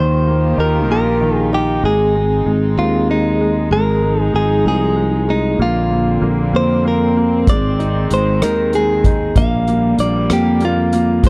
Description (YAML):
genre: six-eight pop ballad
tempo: 64 BPM (dotted quarters)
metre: 6/8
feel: straight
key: unclear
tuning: A4 = 440 Hz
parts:
  - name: direct-recorded clean electric guitar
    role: melody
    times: 0.0-11.3 s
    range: Eb4 to F5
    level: -21 LUFS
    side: equal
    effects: spring reverb
  - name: bright concert grand piano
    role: accompaniment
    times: 0.0-11.3 s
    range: Eb3 to Eb4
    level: -22 LUFS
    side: equal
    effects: none
  - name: warm chamber string section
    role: sustained chords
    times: 0.0-11.3 s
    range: D3 to Bb4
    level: -25 LUFS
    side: equal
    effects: none
  - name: sustaining fretless electric bass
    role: bass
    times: 0.0-11.3 s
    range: Ab1 to F2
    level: -20 LUFS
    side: equal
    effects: none
  - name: soft-mallet drum kit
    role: drums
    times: 7.5-11.3 s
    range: hi-hat, kick drum, rim click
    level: -18 LUFS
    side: equal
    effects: none
room: light reverb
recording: dry, close 1970s-style studio recording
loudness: -15 LUFS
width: mono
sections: 0.0-11.3 A section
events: none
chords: 0.0 Ebadd9; 1.8 Ab; 3.7 Fm7/Ab; 5.6 Bbadd9; 7.5 Ab; 9.4 Bb6